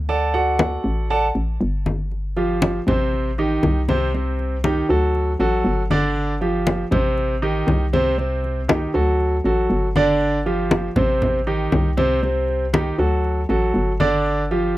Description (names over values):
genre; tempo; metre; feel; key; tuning
latin, Cuban son and guajira; 119 BPM; 4/4; straight; unclear; A4 = 440 Hz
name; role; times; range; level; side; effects
hollow knocking FM bass; bass; 0.0-14.8 s; G1 to D2; -23 LUFS; equal; none
clear grand piano; arpeggios; 0.1-14.8 s; C3 to A5; -20 LUFS; right 1 dB; none
congas; percussion; 0.1-14.8 s; none; -22 LUFS; left 2 dB; none
room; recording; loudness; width
small room ambience; dry, close 1970s-style studio recording; -18 LUFS; side -16 dB against mid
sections
0.0-2.1 A section; 2.1-14.8 B section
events
grand piano solo 0.0-2.1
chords
0.1 D; 2.1 G9sus4; 3.1 Am7b5; 4.1 Cm; 5.1 D; 6.2 G5; 7.2 Am7b5; 8.2 Cm; 9.2 D; 10.2 G5; 11.2 Am7b5; 12.2 Cm; 13.2 D; 14.3 G5